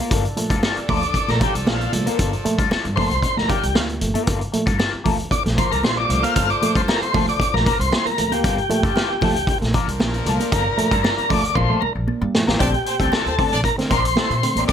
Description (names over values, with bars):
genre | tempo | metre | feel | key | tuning
funk | 115 BPM | 4/4 | straight | G minor | A4 = 440 Hz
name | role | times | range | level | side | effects
electric guitar at the edge of break-up | accompaniment | 0.0-14.7 s | Bb3 to Bb4 | -27 LUFS | left 9 dB | wah, wide subtle chorus
clear horn section | second line | 0.1-14.7 s | F3 to D5 | -30 LUFS | equal | none
reed electric piano | stabs | 0.1-14.7 s | G2 to C4 | -25 LUFS | right 2 dB | fast tremolo
upright bass | bass | 0.1-14.7 s | G1 to Bb2 | -25 LUFS | equal | none
vintage drum kit | drums | 0.1-14.7 s | hi-hat, kick drum, snare drum | -22 LUFS | equal | none
congas | percussion | 0.1-14.7 s | none | -29 LUFS | right 5 dB | none
tonewheel organ | melody | 0.9-14.7 s | F4 to F5 | -22 LUFS | equal | fast rotary speaker
room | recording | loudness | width
light reverb | none | -17 LUFS | side -8 dB against mid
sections
0.0-12.6 A section; 12.6-14.7 B section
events
tonewheel organ solo 0.0-12.6; drum fill 11.6-12.6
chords
0.0 Gm9; 12.6 Bbmaj9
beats
| 0.12 0.64 1.16 1.68 | 2.20 2.72 3.24 3.76 | 4.28 4.80 5.32 5.84 | 6.36 6.88 7.40 7.92 | 8.44 8.96 9.48 10.00 | 10.53 11.04 11.57 12.09 | 12.61 13.13 13.65 14.17 | 14.69